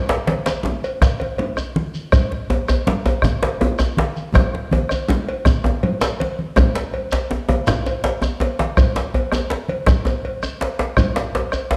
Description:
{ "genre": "west african traditional, West African drum ensemble", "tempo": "108 BPM (dotted quarters)", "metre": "12/8", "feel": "straight", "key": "none", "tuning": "none", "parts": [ { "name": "bombo", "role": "percussion", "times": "0.1-11.7 s", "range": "none", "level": "-25 LUFS", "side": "equal", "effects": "none" }, { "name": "djembe", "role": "percussion", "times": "0.1-11.8 s", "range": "none", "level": "-26 LUFS", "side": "equal", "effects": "none" }, { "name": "djembe", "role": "percussion", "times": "0.1-11.8 s", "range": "none", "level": "-24 LUFS", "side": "equal", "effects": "none" }, { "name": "congas", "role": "percussion", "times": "0.3-11.4 s", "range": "none", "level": "-27 LUFS", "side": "equal", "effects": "none" }, { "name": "cowbell", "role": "percussion", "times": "0.3-11.7 s", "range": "none", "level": "-29 LUFS", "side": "equal", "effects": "none" }, { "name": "shekere", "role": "percussion", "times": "0.5-11.7 s", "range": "none", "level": "-30 LUFS", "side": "equal", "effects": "none" } ], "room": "wet recital hall reverb, RT60 1.4 s", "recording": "dark, warm production", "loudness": "-20 LUFS", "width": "mono", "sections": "0.0-6.6 A section; 6.6-11.8 B section", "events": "drum fill 4.4-6.6", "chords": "none" }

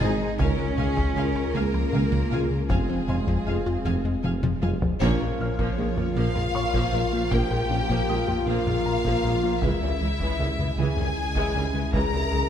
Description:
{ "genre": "cinematic, hybrid orchestral and electronic film score", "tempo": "52 BPM (dotted quarters)", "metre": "6/8", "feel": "straight", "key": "Bb dorian from 5.0 s", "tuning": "A4 = 440 Hz", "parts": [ { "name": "rich symphonic violin section", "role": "melody", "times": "0.0-12.5 s", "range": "Db5 to Bb5", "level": "-32 LUFS", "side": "left 2 dB", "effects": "none" }, { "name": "warm symphonic violin section", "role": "second line", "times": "0.0-12.5 s", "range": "Db4 to Bb4", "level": "-35 LUFS", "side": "left 3 dB", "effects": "none" }, { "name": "rich symphonic viola section", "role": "accompaniment", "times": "0.0-12.4 s", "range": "Eb3 to F5", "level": "-34 LUFS", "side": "right 1 dB", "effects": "none" }, { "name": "hollow soft pad", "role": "sustained chords", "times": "0.0-12.5 s", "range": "F3 to F5", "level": "-32 LUFS", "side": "equal", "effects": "chorus" }, { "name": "mellow French horn section", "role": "sustained chords", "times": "0.0-12.5 s", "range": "Ab3 to F4", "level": "-32 LUFS", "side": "left 3 dB", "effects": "none" }, { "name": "analog pluck", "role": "arpeggios", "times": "0.0-12.4 s", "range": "Db3 to Bb4", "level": "-34 LUFS", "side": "right 1 dB", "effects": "none" }, { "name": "round analog bass", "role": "riff", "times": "0.0-12.4 s", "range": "Db2 to Bb3", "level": "-30 LUFS", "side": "left 2 dB", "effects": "none" }, { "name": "dark tuba", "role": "bass", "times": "0.0-12.4 s", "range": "F1 to Db2", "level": "-33 LUFS", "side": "right 4 dB", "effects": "none" }, { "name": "punchy sub bass", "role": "bass", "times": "0.0-12.5 s", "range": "F1 to Db2", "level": "-32 LUFS", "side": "equal", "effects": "none" }, { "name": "rich chamber cello section", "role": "bass", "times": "0.0-12.4 s", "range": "Bb2 to Eb4", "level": "-35 LUFS", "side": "right 3 dB", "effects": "none" }, { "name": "rich symphonic double bass section", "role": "bass", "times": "0.0-12.4 s", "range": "Ab1 to F2", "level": "-33 LUFS", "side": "right 4 dB", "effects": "none" }, { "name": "solo taiko drums", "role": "drums", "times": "0.0-12.5 s", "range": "none", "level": "-31 LUFS", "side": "equal", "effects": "none" }, { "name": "felt-muted upright piano", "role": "texture", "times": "0.0-12.5 s", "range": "Fb4 to F6", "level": "-40 LUFS", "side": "equal", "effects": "tape echo" } ], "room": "wet scoring stage reverb, RT60 1.6 s", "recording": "none", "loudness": "-22 LUFS", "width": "side -9 dB against mid", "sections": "0.0-5.0 A section; 5.0-12.5 B section", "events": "drum fill 4.4-5.0; band accent 5.0-5.8", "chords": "0.4 Db; 2.7 Fm; 5.0 Bbm; 9.6 Dbm" }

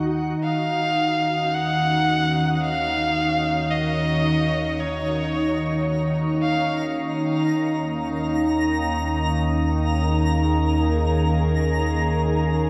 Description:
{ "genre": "ambient", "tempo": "55 BPM", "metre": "3/4", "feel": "straight", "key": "Eb minor", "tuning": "A4 = 441 Hz", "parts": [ { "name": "glassy FM pad", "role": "sustained chords", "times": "0.0-12.7 s", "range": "Eb3 to Bb5", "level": "-25 LUFS", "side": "equal", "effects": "ensemble chorus, built-in reverb, shimmer reverb" }, { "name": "deep rumbling drone", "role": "bass", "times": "0.0-12.7 s", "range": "Eb2", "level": "-30 LUFS", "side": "equal", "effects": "built-in reverb" }, { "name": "twinkling granular texture", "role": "texture", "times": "0.0-12.7 s", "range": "Gb4 to Bb5", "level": "-34 LUFS", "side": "equal", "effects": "built-in reverb, shimmer reverb" }, { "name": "rich electric violin", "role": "melody", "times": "0.4-6.9 s", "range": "Db5 to Gb5", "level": "-27 LUFS", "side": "equal", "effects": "shimmer reverb, delay" }, { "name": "overtone-sweeping drone", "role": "drone", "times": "1.6-12.7 s", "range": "Eb3 to Bb3", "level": "-35 LUFS", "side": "equal", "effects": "chorus, built-in reverb, phaser" } ], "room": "wet cathedral reverb, RT60 6.8 s", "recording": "none", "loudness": "-22 LUFS", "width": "mono", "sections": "0.4-12.7 A section", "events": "fade-in on synth drone 0.4-12.7; fade-in on synth texture 0.4-12.7", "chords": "0.4 Ebm7; 7.0 Eb7sus4" }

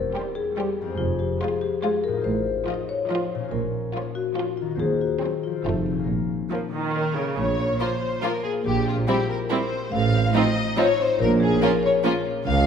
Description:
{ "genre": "cinematic, playful, whimsical film cue", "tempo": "142 BPM", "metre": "3/4", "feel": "straight", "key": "Bb minor", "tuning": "A4 = 441 Hz", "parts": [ { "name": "marimba with medium mallets", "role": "melody", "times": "0.0-12.7 s", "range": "Bb3 to F5", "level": "-26 LUFS", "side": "left 5 dB", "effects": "none" }, { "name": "concert harp", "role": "arpeggios", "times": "0.0-12.7 s", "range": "E2 to Db5", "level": "-30 LUFS", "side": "left 7 dB", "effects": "none" }, { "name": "dark chamber cello section", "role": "bass", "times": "0.0-12.7 s", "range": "Db2 to Bb2", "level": "-29 LUFS", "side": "right 4 dB", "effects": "none" }, { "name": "rich chamber double bass section", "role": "bass", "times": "0.0-12.7 s", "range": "F1 to Eb2", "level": "-28 LUFS", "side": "right 5 dB", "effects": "none" }, { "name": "rich symphonic viola section", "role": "accompaniment", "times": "0.1-12.1 s", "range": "Db3 to C4", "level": "-29 LUFS", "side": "right 4 dB", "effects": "none" }, { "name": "rich chamber violin section", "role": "melody", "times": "0.2-12.7 s", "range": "F4 to F5", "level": "-29 LUFS", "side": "left 2 dB", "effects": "none" }, { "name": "rich chamber violin section", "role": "second line", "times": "0.2-12.1 s", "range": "A3 to G4", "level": "-31 LUFS", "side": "left 1 dB", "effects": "none" }, { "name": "warm tuba", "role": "bass", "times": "7.4-12.7 s", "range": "A1 to Db2", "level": "-29 LUFS", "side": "right 4 dB", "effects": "none" } ], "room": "moderate scoring stage reverb, RT60 2.2 s", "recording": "minimal, uncompressed stereo recording", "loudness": "-21 LUFS", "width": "side -7 dB against mid", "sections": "0.0-7.4 A section; 7.4-12.7 B section", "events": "none", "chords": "0.0 C7/E; 1.0 Fm; 2.3 F7/A; 3.5 Bbm; 4.8 Cdim/Eb; 5.6 F7; 6.1 Bbm; 8.7 C7/Bb; 9.9 F7/A; 11.2 Bbm" }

